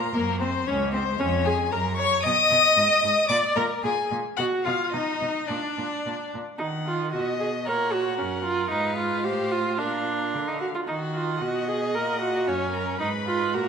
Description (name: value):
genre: quick classical-period movement for string quartet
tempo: 112 BPM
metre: 2/4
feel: straight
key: unclear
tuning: A4 = 440 Hz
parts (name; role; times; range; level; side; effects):
- rich violin; melody; 0.0-13.7 s; Bb4 to D#6; -27 LUFS; left 8 dB; none
- rich cello; bass; 0.0-13.7 s; Db2 to Eb3; -31 LUFS; right 3 dB; none
- rich violin; second line; 0.1-13.7 s; Bb3 to D#5; -30 LUFS; left 4 dB; none
- rich viola; accompaniment; 0.1-13.7 s; Bb3 to D#5; -26 LUFS; right 3 dB; none
room: wet recital hall reverb, RT60 1.7 s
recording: minimal, uncompressed stereo recording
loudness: -22 LUFS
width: side -6 dB against mid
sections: 0.0-6.6 A section; 6.6-13.7 B section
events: none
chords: 0.1 Gb5; 1.2 Db/F; 1.7 Gb; 2.3 B; 2.8 Ab5; 3.3 Bb7; 4.4 B; 5.5 Bb; 6.6 Ebm; 7.1 B; 7.7 Gb/Bb; 8.7 Fm7b5/Ab; 9.2 F/A; 9.8 Bb; 10.9 Ebm; 11.4 B; 11.9 Gb/Bb; 13.0 Fdim/Ab